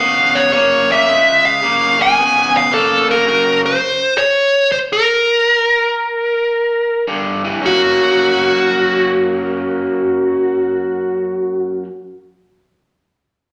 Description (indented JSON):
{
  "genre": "blues",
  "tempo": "110 BPM",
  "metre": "4/4",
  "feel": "swing 68% on 8ths",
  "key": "F# major",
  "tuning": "A4 = 440 Hz",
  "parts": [
    { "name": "dark smooth lead guitar", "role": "melody", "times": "0.0-11.8 s", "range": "F#4 to G#5", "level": "-15 LUFS", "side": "equal", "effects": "overdrive" },
    { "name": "overdriven electric guitar", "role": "riff", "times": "0.0-3.7, 7.1-11.9 s", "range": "F#2 to C#4", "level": "-21 LUFS", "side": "equal", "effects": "none" }
  ],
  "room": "wet large studio reverb, RT60 1.1 s",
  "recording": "none",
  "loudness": "-14 LUFS",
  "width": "mono",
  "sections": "0.0-7.6 A section; 7.6-12.0 B section",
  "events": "none",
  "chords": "0.0 C#; 3.3 F#; 7.1 G5; 7.6 F#",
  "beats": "0.53 | 1.07 1.62 2.16 2.71 | 3.25 3.80 4.34 4.89 | 5.44 5.98 6.53 7.07 | 7.62 8.16 8.71 9.26 | 9.80 10.35 10.89 11.44"
}